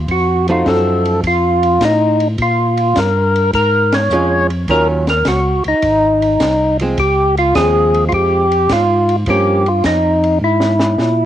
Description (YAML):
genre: soul jazz organ trio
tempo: 105 BPM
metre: 4/4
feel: swing 69% on 8ths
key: F minor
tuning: A4 = 440 Hz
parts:
  - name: tonewheel organ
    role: bass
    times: 0.0-11.3 s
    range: Ab1 to Bb2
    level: -18 LUFS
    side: equal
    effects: slow rotary speaker
  - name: percussive tonewheel organ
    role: melody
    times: 0.1-11.3 s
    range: Eb4 to Db5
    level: -14 LUFS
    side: equal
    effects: slow rotary speaker, overdrive
  - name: compact cocktail drum kit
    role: drums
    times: 0.1-11.2 s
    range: hi-hat, kick drum, ride cymbal, snare drum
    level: -24 LUFS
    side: equal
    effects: cassette tape
  - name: archtop guitar, miked and amplified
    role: accompaniment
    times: 0.5-9.6 s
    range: Eb3 to Gb4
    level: -18 LUFS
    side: right 2 dB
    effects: cassette tape
room: light reverb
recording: home recording on cassette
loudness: -12 LUFS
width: side -11 dB against mid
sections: 0.0-11.3 A section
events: band accent 3.8; drum fill 10.4-11.0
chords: 0.1 F7b9; 2.4 Bbm7; 4.7 Ebm9; 5.8 Ab; 7.0 Dbmaj7; 9.3 Gm7b5; 10.4 E(#11)/G#